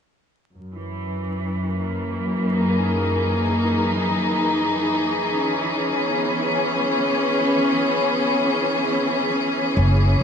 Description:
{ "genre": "ambient dub", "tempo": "104 BPM", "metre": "4/4", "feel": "straight", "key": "F# mixolydian", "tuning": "A4 = 441 Hz", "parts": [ { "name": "rich studio string section", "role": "sustained chords", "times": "0.5-10.2 s", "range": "F#2 to G#4", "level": "-19 LUFS", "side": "left 1 dB", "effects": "low-pass filter" }, { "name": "upright bass", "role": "bass", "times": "9.8-10.2 s", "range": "F#1", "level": "-15 LUFS", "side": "equal", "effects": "none" } ], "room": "wet spring reverb, RT60 1.4 s", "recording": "vinyl crackle, nothing above 10.7 kHz", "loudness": "-19 LUFS", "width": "side -7 dB against mid", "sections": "0.5-10.2 A section", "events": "filter sweep on string section 0.5-10.2", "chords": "0.5 F#13; 5.2 E6" }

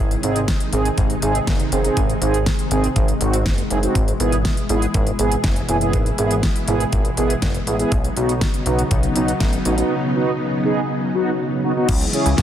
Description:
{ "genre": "synth-pop", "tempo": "121 BPM", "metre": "4/4", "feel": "straight", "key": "unclear", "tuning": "A4 = 440 Hz", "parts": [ { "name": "string machine, cellos", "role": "sustained chords", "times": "0.0-12.4 s", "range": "B2 to E4", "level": "-24 LUFS", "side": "left 1 dB", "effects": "ensemble chorus" }, { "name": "chorused synth bass", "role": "bass", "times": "0.0-12.4 s", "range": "F#1 to C#2", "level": "-22 LUFS", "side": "equal", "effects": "none" }, { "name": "pop drum kit", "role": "drums", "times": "0.1-12.4 s", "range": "crash cymbal, handclaps, hi-hat, kick drum, snare drum", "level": "-20 LUFS", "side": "equal", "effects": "none" }, { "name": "mellow synth brass", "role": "accompaniment", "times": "0.2-12.3 s", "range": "B3 to G#4", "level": "-22 LUFS", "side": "right 2 dB", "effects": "chorus" } ], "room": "light reverb", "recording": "dense, heavily limited modern master", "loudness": "-17 LUFS", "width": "side -10 dB against mid", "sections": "0.0-11.9 A section", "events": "none", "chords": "0.0 G#; 4.0 E; 7.9 Badd9; 11.9 C#m" }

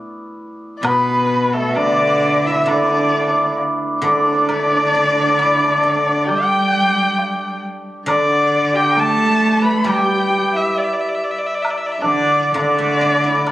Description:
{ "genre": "chinese traditional, Chinese chamber ensemble", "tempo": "67 BPM", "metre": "4/4", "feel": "rubato", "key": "D zhi mode", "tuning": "A4 = 439 Hz", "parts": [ { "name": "hammered dulcimer", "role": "second line", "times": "0.0-13.5 s", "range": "A3 to B4", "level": "-20 LUFS", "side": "right 1 dB", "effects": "none" }, { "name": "rich erhu", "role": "melody", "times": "0.8-13.5 s", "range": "A4 to B5", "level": "-18 LUFS", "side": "left 1 dB", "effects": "none" }, { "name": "rich erhu", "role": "second line", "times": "0.8-13.5 s", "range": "A4 to B5", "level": "-25 LUFS", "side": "left 3 dB", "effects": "none" }, { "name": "warm cello", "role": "second line", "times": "0.8-13.5 s", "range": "B2 to A3", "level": "-22 LUFS", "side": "right 2 dB", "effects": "none" }, { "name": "guzheng", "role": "accompaniment", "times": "0.8-13.5 s", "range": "B2 to A4", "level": "-24 LUFS", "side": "left 1 dB", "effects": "none" }, { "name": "woodblock", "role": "percussion", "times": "0.8-13.5 s", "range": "none", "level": "-27 LUFS", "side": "left 1 dB", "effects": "none" } ], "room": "moderate recital hall reverb, RT60 1.7 s", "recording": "recorded on a phone in the room, club ambience, compression", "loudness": "-14 LUFS", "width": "side -15 dB against mid", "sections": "0.8-13.5 A section", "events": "none", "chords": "none" }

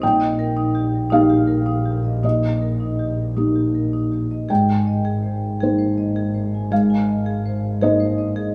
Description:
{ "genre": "neoclassical piano and strings", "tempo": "54 BPM (dotted quarters)", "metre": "6/8", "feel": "rubato", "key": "unclear", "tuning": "A4 = 440 Hz", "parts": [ { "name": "felt-muted upright piano", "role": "accompaniment", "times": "0.0-8.5 s", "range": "Ab2 to G5", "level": "-22 LUFS", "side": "equal", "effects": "none" }, { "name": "marimba with hard mallets", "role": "arpeggios", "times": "0.0-8.5 s", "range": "Eb4 to Ab5", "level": "-29 LUFS", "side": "equal", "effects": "tape echo" }, { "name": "rich double bass", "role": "bass", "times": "0.0-8.5 s", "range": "Ab1 to Bb1", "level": "-26 LUFS", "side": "equal", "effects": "none" } ], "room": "light reverb, studio ambience", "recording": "rough home demo mix", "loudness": "-20 LUFS", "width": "mono", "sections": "0.0-8.5 A section", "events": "none", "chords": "0.0 Eb/Bb; 4.5 Abadd9" }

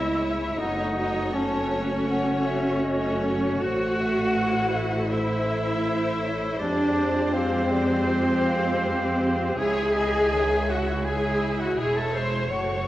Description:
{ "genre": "cinematic, emotional film score for orchestra", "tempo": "81 BPM", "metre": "4/4", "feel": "rubato", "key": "C# harmonic minor", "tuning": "A4 = 440 Hz", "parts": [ { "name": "rich symphonic violin section", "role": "melody", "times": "0.0-12.9 s", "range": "A4 to E5", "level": "-36 LUFS", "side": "left 4 dB", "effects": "none" }, { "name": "clear clarinet", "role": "second line", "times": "0.0-12.9 s", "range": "C4 to C#5", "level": "-31 LUFS", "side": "left 1 dB", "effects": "none" }, { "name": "clear oboe", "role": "second line", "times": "0.0-12.9 s", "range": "C5 to C#6", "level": "-33 LUFS", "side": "right 1 dB", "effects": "none" }, { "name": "mellow concert flute", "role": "second line", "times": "0.0-12.9 s", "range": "C5 to A5", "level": "-33 LUFS", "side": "left 1 dB", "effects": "none" }, { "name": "rich studio violin section", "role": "second line", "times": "0.0-12.9 s", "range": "C5 to C#6", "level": "-36 LUFS", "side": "left 1 dB", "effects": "none" }, { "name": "rich symphonic viola section", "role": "accompaniment", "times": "0.0-12.9 s", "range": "D#3 to G4", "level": "-30 LUFS", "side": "equal", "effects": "none" }, { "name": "clear symphonic double bass section", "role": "bass", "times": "0.0-12.9 s", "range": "E1 to F2", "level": "-30 LUFS", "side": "right 2 dB", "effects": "none" }, { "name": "rich studio cello section", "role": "bass", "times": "0.0-12.9 s", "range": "C4 to C#5", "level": "-27 LUFS", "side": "equal", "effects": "none" } ], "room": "moderate concert hall reverb, RT60 2.2 s", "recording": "worn, warbling old tape, cassette tape, warbly pitch drift", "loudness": "-22 LUFS", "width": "side -14 dB against mid", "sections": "0.0-12.9 A section", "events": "none", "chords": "0.0 C#m; 0.6 F#m; 3.6 Am; 6.6 Fmadd9; 9.6 C#m" }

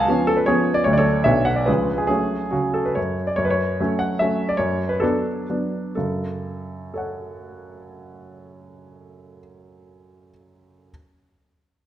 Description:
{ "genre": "classical, romantic triple-time dance for piano with dotted rhythms", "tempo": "118-160 BPM", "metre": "3/4", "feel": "rubato", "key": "F# minor", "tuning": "A4 = 441 Hz", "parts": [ { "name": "clear concert grand piano", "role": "solo", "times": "0.0-10.9 s", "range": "B1 to G#5", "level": "-20 LUFS", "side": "equal", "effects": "none" } ], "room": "wet recital hall reverb, RT60 1.6 s", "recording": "dark, warm production", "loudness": "-19 LUFS", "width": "side -12 dB against mid", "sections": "0.0-3.4 A section; 3.4-6.0 B section; 6.0-8.8 C section", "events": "slowing down 2.8-6.0", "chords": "0.0 C#7; 0.9 Dmaj7; 1.2 Bm; 1.7 C#7; 2.1 F#m; 4.6 Bm/F#; 6.0 F#m" }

